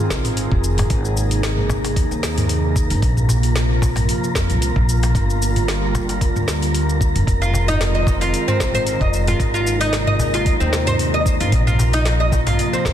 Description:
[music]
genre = organic downtempo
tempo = 113 BPM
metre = 4/4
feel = swing 54% on 16ths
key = unclear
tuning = A4 = 439 Hz
[part]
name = airy breathy pad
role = sustained chords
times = 0.0-12.9 s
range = C3 to Ab4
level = -24 LUFS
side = right 1 dB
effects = chorus, sidechain pumping
[part]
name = wind-like tuned noise texture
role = texture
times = 0.0-12.9 s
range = Bb4 to Bb5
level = -28 LUFS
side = equal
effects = built-in reverb
[part]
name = upright bass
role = bass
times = 0.1-12.9 s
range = F1 to Eb2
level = -20 LUFS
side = equal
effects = none
[part]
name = afro-pop drum kit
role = drums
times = 0.1-12.9 s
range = hi-hat, shaker, snare drum, toms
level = -24 LUFS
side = equal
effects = none
[part]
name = electronic kick drum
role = drums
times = 0.1-12.9 s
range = none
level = -20 LUFS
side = equal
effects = none
[part]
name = cajon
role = percussion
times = 0.8-12.8 s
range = none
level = -27 LUFS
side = left 2 dB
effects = none
[part]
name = oud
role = arpeggios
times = 7.4-12.9 s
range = C4 to Eb5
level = -21 LUFS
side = equal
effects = digital delay
[sound]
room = light reverb, digital ambience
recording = dense, heavily limited modern master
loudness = -16 LUFS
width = side -10 dB against mid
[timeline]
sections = 0.0-12.9 A section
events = none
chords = 0.0 Fm7; 0.9 Abadd9; 3.0 Bbsus2; 5.2 Gm7; 7.3 Fm7; 9.4 Abadd9; 11.5 Bbsus2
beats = 0.37 | 0.90 1.43 1.97 2.50 | 3.03 3.56 4.09 4.62 | 5.15 5.68 6.21 6.74 | 7.28 7.81 8.34 8.87 | 9.40 9.93 10.46 10.99 | 11.52 12.05 12.58

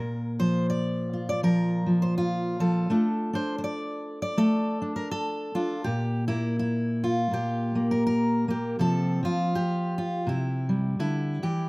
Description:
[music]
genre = folk, solo fingerstyle acoustic guitar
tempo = 82 BPM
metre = 4/4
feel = swing 59% on 8ths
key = unclear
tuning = A4 = 440 Hz
[part]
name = fingerpicked steel-string acoustic guitar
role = solo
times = 0.0-11.7 s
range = Bb2 to D5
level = -24 LUFS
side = equal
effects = none
[sound]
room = light reverb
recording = recorded outdoors, with no room sound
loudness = -24 LUFS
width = side -26 dB against mid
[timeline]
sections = 0.0-11.7 A section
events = none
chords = 0.0 Bb5; 2.9 Dm/A; 5.8 N.C.; 8.8 F5/C; 10.3 C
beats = 0.70 1.44 2.17 | 2.91 3.64 4.38 5.11 | 5.85 6.58 7.32 8.05 | 8.79 9.52 10.26 10.99

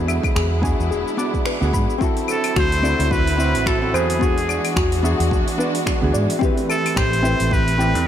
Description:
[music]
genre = sunset chillout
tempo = 109 BPM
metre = 4/4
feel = swing 57% on 16ths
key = unclear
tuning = A4 = 440 Hz
[part]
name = hollow-body jazz guitar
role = accompaniment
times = 0.0-8.1 s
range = B3 to D5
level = -24 LUFS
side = moving between left 3 dB and right 3 dB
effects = auto-pan, tape echo, shimmer reverb
[part]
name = rich symphonic string section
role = sustained chords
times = 0.0-8.1 s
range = D3 to F#4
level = -27 LUFS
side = right 1 dB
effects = shimmer reverb
[part]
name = fingered electric bass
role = bass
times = 0.0-8.1 s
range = E1 to G#2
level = -21 LUFS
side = equal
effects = none
[part]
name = soft round pluck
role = arpeggios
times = 0.1-8.0 s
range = F#4 to D6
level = -26 LUFS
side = left 2 dB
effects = chorus, tape echo, shimmer reverb
[part]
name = deep house drum kit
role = drums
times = 0.1-8.1 s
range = claves, finger snaps, hi-hat, shaker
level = -28 LUFS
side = left 2 dB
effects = overdrive
[part]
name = electronic kick drum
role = drums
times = 0.2-7.6 s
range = none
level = -22 LUFS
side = right 1 dB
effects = overdrive
[part]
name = trumpet with straight mute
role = melody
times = 2.3-8.1 s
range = G#4 to C5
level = -24 LUFS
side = equal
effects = ping-pong delay, shimmer reverb
[sound]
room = moderate concert hall reverb, RT60 2.0 s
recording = none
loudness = -17 LUFS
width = side -10 dB against mid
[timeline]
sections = 0.0-2.0 A section; 2.0-8.1 B section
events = band accent 1.5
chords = 0.0 E7; 2.0 D9; 4.2 E9; 6.4 Am7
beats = 0.36 0.91 1.46 | 2.01 2.56 3.11 3.66 | 4.21 4.76 5.31 5.86 | 6.42 6.96 7.52 8.07

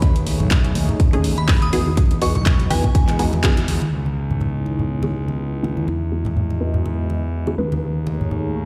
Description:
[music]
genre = deep house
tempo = 123 BPM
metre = 4/4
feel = swing 56% on 16ths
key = E major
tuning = A4 = 441 Hz
[part]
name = dark analog pad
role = sustained chords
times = 0.2-8.7 s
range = E3 to D#5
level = -32 LUFS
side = equal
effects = chorus, sidechain pumping
[part]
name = fuzz fingered electric bass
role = bass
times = 0.0-8.7 s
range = B1 to E2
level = -25 LUFS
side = equal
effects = overdrive, tube saturation, sidechain pumping, low-pass filter
[part]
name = electronic kick drum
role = drums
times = 0.0-3.5 s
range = none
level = -20 LUFS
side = equal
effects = small room ambience
[part]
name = house drum kit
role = drums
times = 0.0-3.9 s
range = handclaps, hi-hat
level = -29 LUFS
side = equal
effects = low-pass filter on hats, small room ambience, low-pass filter on snare
[part]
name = congas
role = percussion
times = 0.3-8.4 s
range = none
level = -28 LUFS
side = equal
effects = sidechain pumping on perc
[part]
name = filtered dub chord stab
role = stabs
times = 1.1-7.7 s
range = A3 to B4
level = -29 LUFS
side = equal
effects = phaser, sidechain pumping, dub echo
[part]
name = glassy synth bell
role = melody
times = 1.4-3.4 s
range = G#5 to D#6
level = -31 LUFS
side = equal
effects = chorus, tape echo
[sound]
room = light reverb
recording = played on a big sound system in a bare room, large studio reverb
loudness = -20 LUFS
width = mono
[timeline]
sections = 0.0-3.9 A section; 3.9-8.7 B section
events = band accent 3.4; filter sweep on synth stab 3.9-8.7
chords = 0.0 B13; 1.7 Emaj9; 3.9 C#m9; 5.9 Emaj9; 7.6 B13/D#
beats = | 0.02 0.51 1.00 1.49 | 1.97 2.46 2.95 3.44 | 3.92 4.41 4.90 5.39 | 5.88 6.36 6.85 7.34 | 7.83 8.31

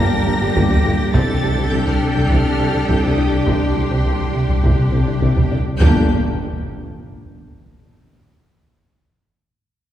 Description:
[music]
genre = cinematic, hybrid orchestral and electronic film score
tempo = 103 BPM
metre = 4/4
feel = straight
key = G minor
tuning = A4 = 439 Hz
[part]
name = clear symphonic violin section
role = melody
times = 0.0-6.1 s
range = C6 to Bb6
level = -30 LUFS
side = left 2 dB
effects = none
[part]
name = rich symphonic violin section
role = second line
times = 0.0-6.1 s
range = G4 to G5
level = -28 LUFS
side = left 2 dB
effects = none
[part]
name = rich symphonic viola section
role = accompaniment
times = 0.0-6.1 s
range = D3 to D4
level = -26 LUFS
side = left 1 dB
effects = none
[part]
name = dark French horn section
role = sustained chords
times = 0.0-6.0 s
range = G3 to D4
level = -26 LUFS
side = left 2 dB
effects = none
[part]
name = soft round pluck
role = arpeggios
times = 0.0-5.6 s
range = C3 to G4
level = -28 LUFS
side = left 2 dB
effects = none
[part]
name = smooth synth bass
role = riff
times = 0.0-5.7 s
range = C2 to G3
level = -21 LUFS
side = left 1 dB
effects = none
[part]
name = clear symphonic double bass section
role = bass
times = 0.0-6.1 s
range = G1 to C2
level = -23 LUFS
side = right 1 dB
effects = none
[part]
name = warm symphonic cello section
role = bass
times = 0.0-6.1 s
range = G2 to Bb4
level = -26 LUFS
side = right 1 dB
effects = none
[part]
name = warm tuba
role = bass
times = 0.0-6.0 s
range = G1 to C2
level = -25 LUFS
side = right 2 dB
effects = none
[part]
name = taiko ensemble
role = drums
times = 0.6-5.9 s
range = none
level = -21 LUFS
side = equal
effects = none
[part]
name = impact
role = sound effects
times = 5.8-8.1 s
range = none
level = -24 LUFS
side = equal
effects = none
[sound]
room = wet concert hall reverb, RT60 2.3 s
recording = heard from further back in the room, small room ambience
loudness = -14 LUFS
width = side -11 dB against mid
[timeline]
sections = 0.0-5.8 A section; 5.8-8.1 B section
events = impact 5.8-8.1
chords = 0.0 Gm; 1.1 Csus2; 5.8 Gm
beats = 0.56 | 1.14 1.73 2.31 2.89 | 3.47 4.06 4.64 5.22 | 5.80 6.39 6.97 7.55

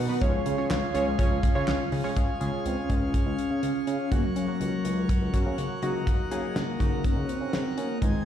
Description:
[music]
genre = synth-pop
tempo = 123 BPM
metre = 4/4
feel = straight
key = Db major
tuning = A4 = 440 Hz
[part]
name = warm velvety synth lead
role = melody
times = 0.0-8.2 s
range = Gb3 to Db5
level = -30 LUFS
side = equal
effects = chorus, tape echo
[part]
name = pipe organ, plenum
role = sustained chords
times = 0.0-8.2 s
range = Db3 to Ab5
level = -35 LUFS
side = right 2 dB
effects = none
[part]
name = soft round pluck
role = arpeggios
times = 0.0-2.1 s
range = F3 to F5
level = -34 LUFS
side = right 1 dB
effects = chorus, tape echo
[part]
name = smooth synth bass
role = bass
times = 0.0-8.1 s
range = Db2 to Db3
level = -32 LUFS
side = equal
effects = none
[part]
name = warm analog keys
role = accompaniment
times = 0.1-8.2 s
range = Eb3 to Bb5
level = -32 LUFS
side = equal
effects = chorus
[part]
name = damped 70s drum kit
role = drums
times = 0.2-8.1 s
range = handclaps, hi-hat, kick drum, snare drum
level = -27 LUFS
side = equal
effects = none
[sound]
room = light reverb, small room ambience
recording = played on a big sound system in a bare room, large studio reverb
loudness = -24 LUFS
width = side -10 dB against mid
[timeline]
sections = 0.0-2.2 A section; 2.2-8.2 B section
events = synth keys fill 5.3-6.1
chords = 0.2 Db; 4.1 Gb/Db; 5.8 Ebm/Db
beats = | 0.21 0.70 1.19 1.68 | 2.17 2.65 3.14 3.63 | 4.12 4.61 5.09 5.58 | 6.07 6.56 7.04 7.53 | 8.02

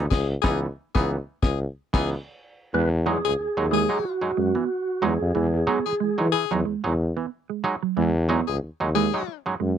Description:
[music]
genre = funk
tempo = 92 BPM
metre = 4/4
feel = swing 56% on 16ths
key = unclear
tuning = A4 = 440 Hz
[part]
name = clav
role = stabs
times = 0.0-9.6 s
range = E3 to D#4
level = -27 LUFS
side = right 4 dB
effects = none
[part]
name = warm tuba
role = bass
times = 0.0-9.8 s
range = C#2 to E3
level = -25 LUFS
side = left 1 dB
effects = none
[part]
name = breathy tenor saxophone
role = second line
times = 0.1-9.4 s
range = G#4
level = -26 LUFS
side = left 18 dB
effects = none
[part]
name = cloth-damped thuddy drum kit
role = drums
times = 0.1-2.1 s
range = crash cymbal, kick drum, snare drum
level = -23 LUFS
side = left 1 dB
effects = none
[part]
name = percussive tonewheel organ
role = melody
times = 2.7-6.3 s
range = F#4 to B4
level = -26 LUFS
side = right 2 dB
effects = fast rotary speaker
[part]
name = mellow electric guitar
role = riff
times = 2.7-9.8 s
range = F#3 to B3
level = -26 LUFS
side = right 13 dB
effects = phaser
[sound]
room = little or no reverb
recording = dry, close 1970s-style studio recording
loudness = -22 LUFS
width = side -9 dB against mid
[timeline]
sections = 0.0-2.7 A section; 2.7-9.8 B section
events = band accent 0.1-2.7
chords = 0.0 C#m9; 2.7 Emaj9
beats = | 0.11 0.77 1.43 2.08 | 2.74 3.39 4.04 4.70 | 5.35 6.01 6.66 7.31 | 7.97 8.62 9.27

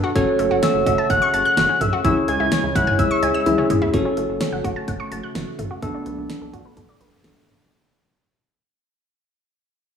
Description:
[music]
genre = synth-pop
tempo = 127 BPM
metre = 4/4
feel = straight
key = F# minor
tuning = A4 = 435 Hz
[part]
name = barky tine electric piano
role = accompaniment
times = 0.0-7.7 s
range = B3 to E5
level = -22 LUFS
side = equal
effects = phaser, low-pass filter
[part]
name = chorused pulse-width pad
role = sustained chords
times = 0.0-7.7 s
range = B2 to A4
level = -28 LUFS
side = equal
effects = low-pass filter
[part]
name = analog pluck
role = arpeggios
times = 0.0-7.7 s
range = E3 to F#6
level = -27 LUFS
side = right 2 dB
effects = chorus, low-pass filter, tape echo
[part]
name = rubbery square bass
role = bass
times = 0.2-7.6 s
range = E1 to C#2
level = -29 LUFS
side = equal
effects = none
[part]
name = pop drum kit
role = drums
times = 0.2-7.6 s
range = cowbell, hi-hat, kick drum, snare drum, toms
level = -25 LUFS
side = right 1 dB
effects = none
[part]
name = soft octave-layered synth lead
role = melody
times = 0.6-3.7 s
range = E6 to G#6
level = -21 LUFS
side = left 4 dB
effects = chorus, tape echo
[sound]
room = moderate lush hall reverb, RT60 1.6 s, digital ambience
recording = rough home demo mix, studio ambience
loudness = -17 LUFS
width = side -7 dB against mid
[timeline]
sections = 0.0-3.9 A section; 3.9-7.7 B section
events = drum fill 3.5-3.9; fade-out 3.9-7.7; filter sweep 3.9-7.7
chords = 0.2 F#m; 2.0 C#m; 3.9 F#m; 5.8 Bm7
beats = | 0.15 0.63 1.10 1.57 | 2.04 2.52 2.99 3.46 | 3.94 4.41 4.88 5.35 | 5.83 6.30 6.77 7.24

